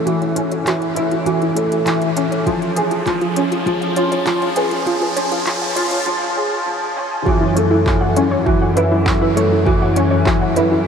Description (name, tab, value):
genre	piano and strings electronica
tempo	100 BPM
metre	4/4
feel	straight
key	unclear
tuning	A4 = 440 Hz
part	warm upright piano	riff	0.0-10.9 s	E3 to G#4	-17 LUFS	left 1 dB	ensemble chorus, ping-pong delay
part	riser	sound effects	1.1-6.1 s	none	-30 LUFS	equal	none
part	warbly dusty pluck	arpeggios	0.1-10.8 s	E4 to F#5	-22 LUFS	right 2 dB	chorus, sidechain pumping, ping-pong delay
part	organic electronic drum kit	drums	0.1-10.7 s	handclaps, hi-hat	-28 LUFS	equal	none
part	electronic kick drum	drums	2.5-10.4 s	none	-20 LUFS	equal	overdrive
part	warm chamber cello section	bass	7.3-10.9 s	F#2	-20 LUFS	equal	sidechain pumping
room	wet huge ambient reverb, RT60 7.7 s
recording	dreamy mix soaked in reverb, high-pass filter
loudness	-15 LUFS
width	side -7 dB against mid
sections	0.0-7.3 A section; 7.3-10.9 B section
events	build-up 0.0-7.3; filter sweep on synth arpeggio sound 0.0-7.3; filter sweep 0.0-7.3; riser 1.1-6.1; break 6.1-7.3; drop 7.3-10.9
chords	0.0 F#m7; 2.5 C#; 7.3 F#m7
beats	| 0.07 0.67 1.27 1.87 | 2.47 3.07 3.67 4.27 | 4.87 5.47 6.07 6.67 | 7.27 7.87 8.47 9.07 | 9.67 10.27 10.87